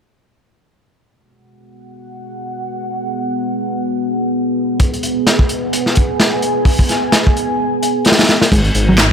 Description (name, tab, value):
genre	breakbeat, breaks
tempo	129 BPM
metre	4/4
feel	swing 57% on 16ths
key	G# minor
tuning	A4 = 442 Hz
part	deep dark ambient pad	sustained chords	2.1-9.1 s	G#3 to G#5	-18 LUFS	equal	chorus, built-in reverb, sidechain pumping
part	crunchy breakbeat drum kit	drums	4.8-9.1 s	crash cymbal, hi-hat, kick drum, snare drum	-13 LUFS	equal	none
part	hollow-body short-scale picked electric bass	riff	8.5-9.1 s	F#3 to D#4	-15 LUFS	equal	none
part	detuned saw bass	bass	8.5-9.1 s	G#1	-14 LUFS	equal	none
part	electronic handclaps	drums	9.0-9.1 s	none	-13 LUFS	equal	overdrive
room	light reverb, studio reverb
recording	none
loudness	-13 LUFS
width	side -7 dB against mid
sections	1.1-8.5 A section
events	kick drops out 7.6-8.5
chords	1.1 G#m7